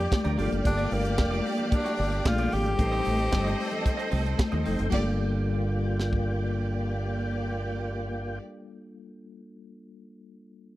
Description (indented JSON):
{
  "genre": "disco",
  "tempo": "112 BPM",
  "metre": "4/4",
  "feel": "straight",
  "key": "G minor",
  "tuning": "A4 = 442 Hz",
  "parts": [
    { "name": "breathy tenor saxophone", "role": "melody", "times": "0.0-4.4 s", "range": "Bb3 to G4", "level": "-31 LUFS", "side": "left 1 dB", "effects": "none" },
    { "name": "clear studio string section", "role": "second line", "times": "0.0-8.4 s", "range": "Bb3 to Eb5", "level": "-33 LUFS", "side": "right 1 dB", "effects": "none" },
    { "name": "clean electric guitar", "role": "accompaniment", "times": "0.0-8.5 s", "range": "Bb3 to Eb5", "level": "-40 LUFS", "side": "right 6 dB", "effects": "none" },
    { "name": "mellow tine electric piano", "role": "accompaniment", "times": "0.0-10.8 s", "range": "G3 to Bb4", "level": "-36 LUFS", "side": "left 3 dB", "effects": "medium stereo tremolo" },
    { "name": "tonewheel organ", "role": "sustained chords", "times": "0.0-8.4 s", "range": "Bb3 to C6", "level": "-37 LUFS", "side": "right 1 dB", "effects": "overdrive, chorus vibrato, slow rotary speaker" },
    { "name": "fingered electric bass", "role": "bass", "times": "0.0-8.4 s", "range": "F1 to Eb2", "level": "-29 LUFS", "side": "equal", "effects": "none" },
    { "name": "tight funk drum kit", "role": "drums", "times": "0.1-6.3 s", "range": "crash cymbal, hi-hat, kick drum, snare drum", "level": "-26 LUFS", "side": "equal", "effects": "none" },
    { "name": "congas", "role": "percussion", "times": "0.1-5.2 s", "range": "none", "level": "-35 LUFS", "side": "left 3 dB", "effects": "none" }
  ],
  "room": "small room ambience",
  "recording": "dry, close 1970s-style studio recording",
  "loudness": "-25 LUFS",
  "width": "side -16 dB against mid",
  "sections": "0.0-4.9 A section; 4.9-9.2 B section",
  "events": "none",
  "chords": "0.4 Gm7; 2.8 Am7b5; 4.9 Gm7"
}